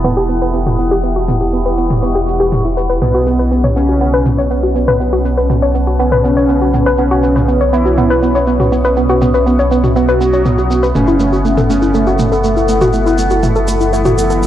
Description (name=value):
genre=melodic techno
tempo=121 BPM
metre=4/4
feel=straight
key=unclear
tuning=A4 = 444 Hz
part: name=dark analog pad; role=sustained chords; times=0.0-14.5 s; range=E4 to C#6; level=-21 LUFS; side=equal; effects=chorus, phaser
part: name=woody wave-folded pluck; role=arpeggios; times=0.0-14.5 s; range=A3 to C#5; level=-15 LUFS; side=equal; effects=chorus, analog delay
part: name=dark detuned saw bass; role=bass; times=0.0-14.5 s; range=E1 to B1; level=-17 LUFS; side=equal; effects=none
part: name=overtone-sweeping drone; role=drone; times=0.0-14.5 s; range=B2 to B3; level=-23 LUFS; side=left 1 dB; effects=chorus, built-in reverb, phaser
part: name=electronic toms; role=drums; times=0.0-14.2 s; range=none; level=-18 LUFS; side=equal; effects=none
part: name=egg shaker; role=percussion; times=0.0-14.5 s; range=none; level=-31 LUFS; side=equal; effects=none
part: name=granular cloud pad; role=texture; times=0.0-14.5 s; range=C#4 to F#5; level=-22 LUFS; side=equal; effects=built-in reverb
part: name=fat analog lead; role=melody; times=3.0-14.5 s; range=B3 to F#4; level=-17 LUFS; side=equal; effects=ensemble chorus, tape echo
room=moderate lush hall reverb, RT60 1.9 s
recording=dry, gritty hardware recording, low-pass filter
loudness=-10 LUFS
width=side -11 dB against mid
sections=0.0-14.5 A section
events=filter sweep on analog synth pad 0.0-14.5; filter sweep 0.0-14.5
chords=0.0 Emadd9; 3.0 Bsus2; 11.0 F#m7